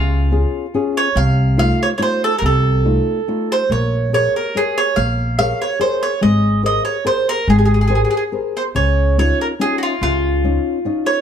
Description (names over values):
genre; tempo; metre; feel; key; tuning
italian folk, Italian serenade; 142 BPM; 3/4; straight; Db major; A4 = 440 Hz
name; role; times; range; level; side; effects
mandolin; melody; 0.0-11.2 s; F4 to F5; -18 LUFS; right 3 dB; plate reverb
nylon-string guitar; accompaniment; 0.0-11.2 s; C3 to Db5; -20 LUFS; left 4 dB; none
upright bass; bass; 0.0-10.6 s; Ab1 to Db2; -17 LUFS; equal; none
room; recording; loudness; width
moderate small room reverb, RT60 0.5 s; dark, warm production; -14 LUFS; side -8 dB against mid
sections
0.0-11.2 A section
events
none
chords
0.0 Db; 1.1 F7/C; 3.7 Bbm7; 6.2 Abadd9; 8.7 Dbadd9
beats
0.31 0.73 | 1.15 1.57 1.99 | 2.41 2.84 3.27 | 3.69 4.12 4.54 | 4.97 5.39 5.80 | 6.22 6.64 7.05 | 7.47 7.89 8.32 | 8.75 9.17 9.60 | 10.02 10.44 10.86